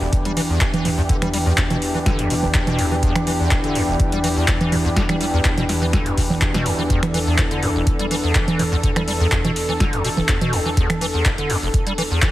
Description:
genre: acid house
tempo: 124 BPM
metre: 4/4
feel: straight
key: E minor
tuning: A4 = 440 Hz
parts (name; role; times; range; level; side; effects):
- warm analog pad; sustained chords; 0.0-12.3 s; E2 to A4; -22 LUFS; equal; chorus, sidechain pumping
- acid bass, square; riff; 0.0-12.3 s; E1 to G3; -23 LUFS; equal; ensemble chorus, sidechain pumping, tape echo
- booming analog drum machine; drums; 0.1-12.3 s; congas, finger snaps, handclaps, hi-hat, snare drum; -22 LUFS; right 1 dB; overdrive
- electronic kick drum; drums; 0.1-12.3 s; none; -21 LUFS; equal; overdrive
room: light reverb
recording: heavily compressed radio sound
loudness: -17 LUFS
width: side -15 dB against mid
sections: 0.0-12.3 A section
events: none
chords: 0.0 Em7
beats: 0.13 0.61 | 1.09 1.58 2.06 2.54 | 3.03 3.51 4.00 4.48 | 4.96 5.45 5.93 6.42 | 6.90 7.38 7.87 8.35 | 8.84 9.32 9.80 10.29 | 10.77 11.26 11.74 12.22

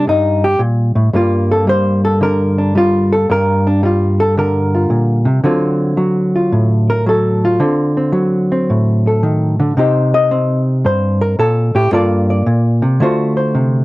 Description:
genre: solo jazz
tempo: 111 BPM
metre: 4/4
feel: swing 68% on 8ths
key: G minor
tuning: A4 = 440 Hz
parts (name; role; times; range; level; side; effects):
- hollow-body jazz guitar; solo; 0.0-13.8 s; G2 to Eb5; -12 LUFS; equal; none
room: light reverb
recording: dry, close 1970s-style studio recording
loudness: -12 LUFS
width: side -19 dB against mid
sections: 0.0-13.8 A section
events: hollow-body jazz guitar solo 0.0-13.8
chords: 0.0 Cm7 (rootless); 1.1 Gm7; 5.4 D7#9; 9.8 Cm7; 11.9 Gm9; 13.0 D7#9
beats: 0.06 0.59 | 1.13 1.67 2.21 2.75 | 3.29 3.83 4.36 4.90 | 5.44 5.98 6.52 7.06 | 7.60 8.14 8.68 9.21 | 9.75 10.29 10.83 11.37 | 11.91 12.45 12.99 13.53

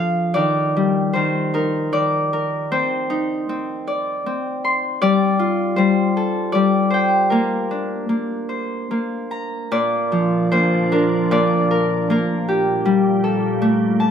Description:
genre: children's music, lullaby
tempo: 77 BPM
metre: 3/4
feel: rubato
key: Bb major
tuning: A4 = 437 Hz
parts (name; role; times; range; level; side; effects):
- Celtic harp; melody; 0.0-14.1 s; Bb2 to C6; -17 LUFS; left 1 dB; none
- soft additive organ-like pad; sustained chords; 10.2-14.1 s; Bb2 to D4; -24 LUFS; right 2 dB; ensemble chorus, built-in reverb
room: light reverb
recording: close, detailed microphones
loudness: -17 LUFS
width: side -8 dB against mid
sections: 0.0-9.7 A section; 9.7-14.1 A section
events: none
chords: 0.3 Eb5; 2.7 Cmadd9; 5.0 Fadd9; 7.3 Bbadd9; 9.7 Bb; 12.1 Gmadd9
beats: | 0.34 1.14 1.93 | 2.71 3.49 4.26 | 5.03 5.79 6.55 | 7.32 8.10 8.90 | 9.71 10.51 11.30 | 12.09 12.86 13.62

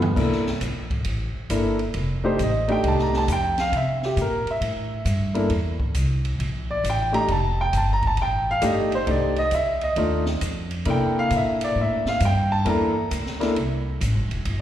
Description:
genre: jazz piano trio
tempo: 135 BPM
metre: 4/4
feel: swing 66% on 8ths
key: C mixolydian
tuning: A4 = 440 Hz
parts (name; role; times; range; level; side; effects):
- clear concert grand piano; melody; 0.0-13.5 s; A3 to Bb5; -22 LUFS; equal; slapback echo
- upright bass; bass; 0.0-14.6 s; E1 to C3; -25 LUFS; equal; none
- open jazz drum kit; drums; 0.0-14.6 s; crash cymbal, hi-hat, kick drum, ride cymbal, snare drum, toms; -31 LUFS; right 1 dB; none
room: light reverb, studio ambience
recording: live gig heard through the venue's PA, recital hall reverb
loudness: -20 LUFS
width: side -11 dB against mid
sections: 0.2-14.6 A section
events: drum fill 0.0; grand piano solo 0.0-14.6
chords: 0.2 C13; 1.9 F13; 3.7 C13; 7.3 F13; 10.9 C13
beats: | 0.16 0.61 1.05 1.50 | 1.94 2.39 2.83 3.28 | 3.72 4.17 4.61 5.06 | 5.50 5.95 6.39 6.84 | 7.28 7.73 8.18 8.62 | 9.07 9.52 9.96 10.41 | 10.86 11.31 11.76 12.20 | 12.65 13.10 13.55 14.00 | 14.45

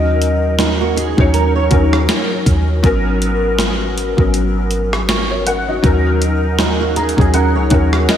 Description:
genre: contemporary R&B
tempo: 80 BPM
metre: 4/4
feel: swing 58% on 16ths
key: unclear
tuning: A4 = 440 Hz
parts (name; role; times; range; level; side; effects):
- soft octave-layered synth lead; melody; 0.0-0.6 s; D#5; -23 LUFS; left 2 dB; chorus, phaser, diffuse ambient delay
- felt-muted upright piano; accompaniment; 0.0-8.2 s; F#3 to A#5; -17 LUFS; left 2 dB; ensemble chorus
- clean 808-style bass; bass; 0.0-8.1 s; G#1 to D#2; -17 LUFS; equal; none
- worn celesta; texture; 0.0-0.2, 5.1-6.2 s; G#5 to C#6; -33 LUFS; right 6 dB; none
- gated 80s digital drum machine; drums; 0.2-8.2 s; hi-hat, kick drum, rim click, snare drum; -18 LUFS; equal; gated reverb, gated reverb snare
- flamenco guitar; arpeggios; 0.6-8.2 s; F#3 to C#5; -20 LUFS; right 8 dB; ensemble chorus, diffuse ambient delay
room: moderate lush hall reverb, RT60 2.9 s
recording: dreamy mix soaked in reverb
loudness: -12 LUFS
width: side -9 dB against mid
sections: 0.0-8.2 A section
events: felt piano fill 6.6-8.2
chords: 0.0 D#m7; 2.8 G#m11; 5.8 D#m7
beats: 0.59 1.34 2.09 | 2.84 3.59 4.34 5.09 | 5.84 6.59 7.34 8.09

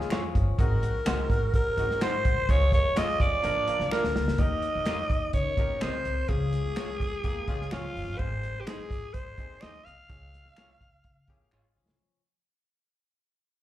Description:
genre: uptempo 1960s-style soul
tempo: 126 BPM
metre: 4/4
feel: straight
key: unclear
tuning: A4 = 439 Hz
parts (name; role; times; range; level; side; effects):
- breathy alto saxophone; melody; 0.0-11.8 s; F4 to F5; -30 LUFS; equal; plate reverb, slapback echo
- vibraphone with soft mallets; second line; 0.0-8.2 s; F3 to Eb6; -40 LUFS; left 2 dB; plate reverb, slapback echo
- bright upright piano; accompaniment; 0.0-11.9 s; Ab3 to Bb4; -40 LUFS; left 6 dB; plate reverb, slapback echo
- direct-recorded clean electric guitar; riff; 0.0-4.1, 7.2-8.2, 11.3-12.2 s; F3 to G4; -39 LUFS; left 10 dB; slapback echo
- upright bass; bass; 0.0-12.0 s; Gb1 to Eb3; -30 LUFS; equal; none
- warm soul drum kit; drums; 0.0-12.0 s; hi-hat, kick drum, snare drum; -29 LUFS; equal; none
- electric guitar through a small old amp; stabs; 0.1-11.6 s; Eb4 to Eb5; -36 LUFS; right 4 dB; plate reverb, slapback echo
- finger snaps; percussion; 0.1-11.6 s; none; -42 LUFS; left 2 dB; none
room: little or no reverb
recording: live gig heard through the venue's PA, club reverb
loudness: -25 LUFS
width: side -13 dB against mid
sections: 0.0-4.4 A section; 4.4-12.0 B section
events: drum fill 3.9-4.4, 11.5-12.0; fade-out 4.4-12.0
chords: 0.0 Db; 0.6 Ab7; 2.5 Db; 3.4 Bb; 4.4 Eb; 6.3 Db; 8.2 Ab; 10.1 Db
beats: 0.11 | 0.59 1.06 1.54 2.01 | 2.49 2.96 3.44 3.91 | 4.39 4.86 5.34 5.82 | 6.29 6.77 7.24 7.72 | 8.19 8.67 9.15 9.62 | 10.10 10.57 11.05 11.53

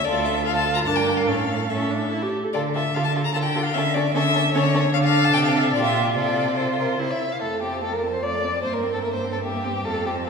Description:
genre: quick classical-period movement for string quartet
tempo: 148 BPM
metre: 3/4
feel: rubato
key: F major from 4.9 s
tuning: A4 = 439 Hz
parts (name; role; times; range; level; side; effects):
- warm violin; melody; 0.0-10.3 s; C5 to Bb5; -25 LUFS; left 4 dB; none
- warm violin; second line; 0.1-10.3 s; G4 to F5; -27 LUFS; left 1 dB; none
- warm viola; accompaniment; 0.1-10.3 s; A3 to A4; -26 LUFS; right 2 dB; none
- rich cello; bass; 0.1-10.3 s; D2 to D3; -26 LUFS; right 1 dB; none
room: wet recital hall reverb, RT60 1.8 s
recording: recorded in a church or concert hall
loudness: -20 LUFS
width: side -5 dB against mid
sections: 0.0-7.4 A section; 7.4-10.3 B section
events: none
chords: 0.0 Dm; 0.9 Gm; 1.3 A; 2.5 Dm; 3.7 A/D; 4.9 D5; 5.7 Gm7/Bb; 6.2 F/C; 7.0 C; 7.4 F; 8.6 C7/G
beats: | 0.05 0.45 0.86 | 1.28 1.70 2.12 | 2.54 2.95 3.35 | 3.75 4.14 4.54 | 4.94 5.34 5.75 | 6.16 6.58 7.00 | 7.42 7.83 8.23 | 8.63 9.04 9.44 | 9.84 10.25

